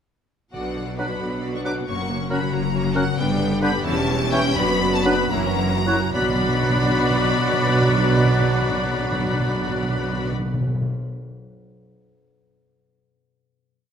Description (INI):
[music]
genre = classical, dramatic, fast romantic movement for symphony orchestra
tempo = 70-92 BPM (dotted quarters)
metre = 6/8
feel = straight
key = B minor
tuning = A4 = 442 Hz
[part]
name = rich studio violin section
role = melody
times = 0.5-10.3 s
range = F#5 to D6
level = -27 LUFS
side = left 3 dB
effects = none
[part]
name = warm symphonic violin section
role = second line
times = 0.5-10.3 s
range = E4 to F#5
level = -31 LUFS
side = left 2 dB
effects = none
[part]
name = clear symphonic viola section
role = accompaniment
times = 0.5-10.3 s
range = D3 to F#4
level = -30 LUFS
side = right 2 dB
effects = none
[part]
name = bright trombone section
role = sustained chords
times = 0.5-10.3 s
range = B2 to C#4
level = -30 LUFS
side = right 3 dB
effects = none
[part]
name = warm French horn section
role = sustained chords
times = 0.5-10.3 s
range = C#4 to G4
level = -30 LUFS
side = left 3 dB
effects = none
[part]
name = concert harp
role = arpeggios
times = 0.5-11.2 s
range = E2 to F#5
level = -30 LUFS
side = left 10 dB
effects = none
[part]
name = clear symphonic cello section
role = bass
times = 0.5-10.3 s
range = E2 to B2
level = -28 LUFS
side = right 2 dB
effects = none
[part]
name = warm symphonic double bass section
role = bass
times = 0.5-10.3 s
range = E1 to B1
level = -28 LUFS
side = right 4 dB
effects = none
[part]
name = timpani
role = percussion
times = 0.5-1.2, 4.6-10.9 s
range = F#2 to B2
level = -26 LUFS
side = equal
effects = none
[part]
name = dark clarinet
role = second line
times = 1.0-10.3 s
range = C#4 to F#4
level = -30 LUFS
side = left 1 dB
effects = none
[part]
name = hollow flute section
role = second line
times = 1.0-10.3 s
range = F#6 to G6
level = -30 LUFS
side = left 1 dB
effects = none
[part]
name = mellow oboe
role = second line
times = 1.0-10.3 s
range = A#4 to D5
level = -30 LUFS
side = equal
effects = none
[part]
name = warm bassoon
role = accompaniment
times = 1.0-10.3 s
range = D3 to F#3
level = -31 LUFS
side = right 2 dB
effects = none
[sound]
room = wet scoring stage reverb, RT60 1.6 s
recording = none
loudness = -19 LUFS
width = side -8 dB against mid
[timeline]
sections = 0.5-6.2 A section; 6.2-9.5 final chord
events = slowing down 2.5-6.2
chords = 0.5 Bm; 1.9 F#; 3.2 G; 3.9 C#dim/E; 4.6 Bm/F#; 5.3 F#7; 6.2 Bm